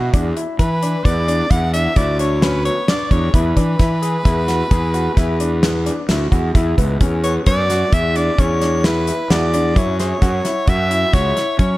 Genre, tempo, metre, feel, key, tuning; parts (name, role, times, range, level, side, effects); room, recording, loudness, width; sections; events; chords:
progressive instrumental, band music in an uneven meter; 131 BPM; 7/4; straight; A4 = 440 Hz
clear baby grand piano; arpeggios; 0.0-11.8 s; B3 to G#4; -24 LUFS; left 2 dB; slapback echo, tape echo
fuzz fingered electric bass; bass; 0.0-11.8 s; C#2 to F#3; -19 LUFS; equal; overdrive
damped 70s drum kit; drums; 0.1-11.7 s; hi-hat, kick drum, snare drum; -17 LUFS; equal
breathy soprano saxophone; melody; 0.6-11.8 s; B4 to F#5; -21 LUFS; equal
light reverb, studio reverb; -14 LUFS; side -18 dB against mid
0.0-6.5 A section; 6.5-11.8 B section
0.1 E7(no3); 6.5 Esus2; 9.8 F#5